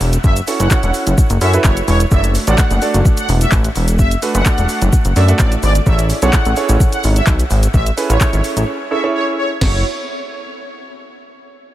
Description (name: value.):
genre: dance-pop.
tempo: 128 BPM.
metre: 4/4.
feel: straight.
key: F# minor.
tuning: A4 = 441 Hz.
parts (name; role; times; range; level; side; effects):
chorused synth bass; bass; 0.0-9.8 s; E1 to F#2; -14 LUFS; equal; sidechain pumping.
smooth R&B drum kit; drums; 0.0-9.7 s; crash cymbal, handclaps, hi-hat, kick drum, shaker, snare drum; -16 LUFS; equal; none.
soft supersaw; melody; 0.2-9.8 s; C#5 to F#5; -22 LUFS; equal; wide subtle chorus, tape echo.
warm grand piano; accompaniment; 0.5-9.8 s; A3 to E5; -21 LUFS; right 3 dB; sidechain pumping.
room: light reverb, digital ambience.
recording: none.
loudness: -12 LUFS.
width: side -14 dB against mid.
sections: 0.0-9.6 A section; 9.6-11.5 B section.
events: drop 0.0-9.6; break 8.7-9.6.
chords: 0.0 F#m7; 2.1 D; 5.9 Amaj7; 9.6 F#m7.